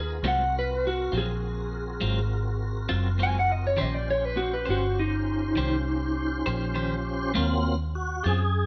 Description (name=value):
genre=slow blues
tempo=67 BPM (dotted quarters)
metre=12/8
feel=straight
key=Ab mixolydian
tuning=A4 = 440 Hz
part: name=electric guitar through a small old amp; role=melody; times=0.0-6.7 s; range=Eb4 to Ab5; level=-30 LUFS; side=equal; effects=none
part: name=tonewheel organ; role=sustained chords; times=0.0-8.7 s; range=Gb3 to C5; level=-35 LUFS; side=equal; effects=slow rotary speaker, chorus vibrato
part: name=vintage muted fingered electric bass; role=bass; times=0.0-8.7 s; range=Gb1 to Gb2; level=-30 LUFS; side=equal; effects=none
part: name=clean electric guitar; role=accompaniment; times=0.2-8.4 s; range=Ab2 to C5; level=-34 LUFS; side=equal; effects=tremolo
room=moderate stone room reverb, RT60 1.1 s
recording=band playing live in one room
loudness=-27 LUFS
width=mono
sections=0.0-7.4 A section; 7.4-8.7 A section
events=clean electric guitar solo 0.0-7.4; tonewheel organ solo 7.4-8.7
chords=0.2 Ab13; 3.8 Eb13; 7.4 Ab13